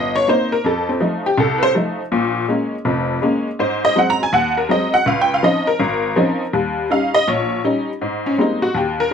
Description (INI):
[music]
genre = solo jazz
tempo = 163 BPM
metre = 4/4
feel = swing 64% on 8ths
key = Ab major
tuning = A4 = 440 Hz
[part]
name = honky-tonk upright piano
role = solo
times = 0.0-9.1 s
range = F1 to Bb5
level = -16 LUFS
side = left 1 dB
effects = none
[sound]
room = light reverb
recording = close, detailed microphones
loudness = -16 LUFS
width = side -7 dB against mid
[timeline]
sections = 0.0-8.0 A section; 8.0-9.1 A section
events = honky-tonk piano solo 0.0-8.0, 8.0-9.1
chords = 0.0 Cm7; 0.6 F7; 2.1 Bbm7; 3.6 Ab7; 5.1 Dbmaj9; 6.5 Eb7; 8.0 Abmaj9